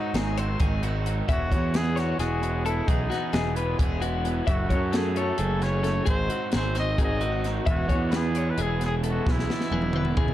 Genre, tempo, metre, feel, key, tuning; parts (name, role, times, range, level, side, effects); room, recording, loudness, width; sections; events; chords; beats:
math rock and midwest emo; 263 BPM (eighths); 7/8; straight; E major; A4 = 440 Hz
clear trumpet; melody; 0.0-10.3 s; D#4 to D#5; -32 LUFS; equal
twelve-string electric guitar; accompaniment; 0.0-10.3 s; E2 to G#4; -33 LUFS; right 7 dB; spring reverb
clean electric guitar; arpeggios; 0.0-10.3 s; F#4 to E5; -32 LUFS; left 7 dB; tremolo
raw garage guitar; riff; 0.0-10.3 s; F#2 to E4; -35 LUFS; right 2 dB; overdrive
fuzz picked electric bass; bass; 0.1-10.3 s; E1 to F#2; -27 LUFS; equal; overdrive
crisp fusion drum kit; drums; 0.1-10.3 s; hi-hat, kick drum, snare drum, toms; -27 LUFS; equal
little or no reverb; dark, warm production; -23 LUFS; side -13 dB against mid
0.0-10.3 A section
drum fill 9.3-10.3
0.0 G#7; 1.3 E69; 4.5 F#m9; 6.1 G#7; 7.7 E69
0.15 0.37 0.60 0.83 1.06 | 1.29 1.51 1.74 1.97 2.20 2.43 2.65 | 2.88 3.11 3.34 3.57 3.79 4.02 4.25 | 4.48 4.71 4.93 5.16 5.39 5.62 5.84 | 6.07 6.30 6.53 6.76 6.99 7.21 7.44 | 7.67 7.90 8.12 8.35 8.58 8.81 9.04 | 9.27 9.49 9.72 9.95 10.18